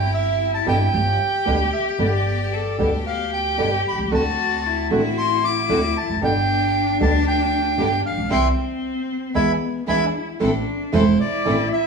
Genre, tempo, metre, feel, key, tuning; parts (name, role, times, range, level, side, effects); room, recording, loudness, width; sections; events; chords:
tango; 114 BPM; 4/4; rubato; A4 = 440 Hz
bandoneon; melody; 0.0-11.9 s; C5 to D6; -23 LUFS; right 2 dB
warm cello; second line; 0.0-11.9 s; B3 to A4; -25 LUFS; left 5 dB
bright studio string section; stabs; 0.0-11.7 s; G3 to A4; -32 LUFS; left 1 dB
upright bass; bass; 0.0-11.7 s; E1 to E2; -23 LUFS; right 1 dB
flamenco guitar; accompaniment; 0.7-11.5 s; B2 to G4; -24 LUFS; right 2 dB
wet stone room reverb, RT60 1.1 s; band playing live in one room, small room ambience; -18 LUFS; side -5 dB against mid
0.0-10.4 A section; 10.4-11.9 B section
band accent 8.3-10.4
0.0 C/G; 0.9 G; 4.1 D7; 6.2 G; 8.3 C; 9.4 E7; 10.4 Am